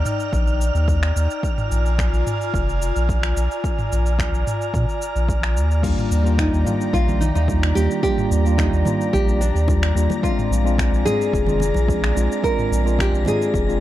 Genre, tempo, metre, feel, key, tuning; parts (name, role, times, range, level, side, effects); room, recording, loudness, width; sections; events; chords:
sunset chillout; 109 BPM; 4/4; straight; Eb major; A4 = 440 Hz
airy breathy pad; sustained chords; 0.0-13.8 s; Eb3 to Bb5; -27 LUFS; left 1 dB; chorus
warm sub bass; bass; 0.0-13.8 s; F1 to Bb2; -19 LUFS; equal
wind-like tuned noise texture; texture; 0.0-13.8 s; F6 to Bb6; -34 LUFS; right 3 dB; built-in reverb
smooth R&B drum kit; drums; 0.1-13.8 s; crash cymbal, finger snaps, shaker, toms; -28 LUFS; equal; overdrive
electronic kick drum; drums; 0.3-13.7 s; -25 LUFS; equal; overdrive
tine electric piano; accompaniment; 5.8-13.8 s; G3 to F4; -24 LUFS; moving between left 8 dB and right 7 dB; auto-pan, analog delay
nylon-string guitar; melody; 6.4-13.8 s; D4 to Bb4; -24 LUFS; equal; analog delay
congas; percussion; 6.7-13.4 s; -30 LUFS; right 1 dB; analog delay
moderate spring reverb, RT60 2.1 s; echo-heavy mix; -17 LUFS; side -14 dB against mid
0.0-13.8 A section
0.0 Ebmaj7; 1.4 Bb7; 5.8 Ebmaj7; 10.2 Bb7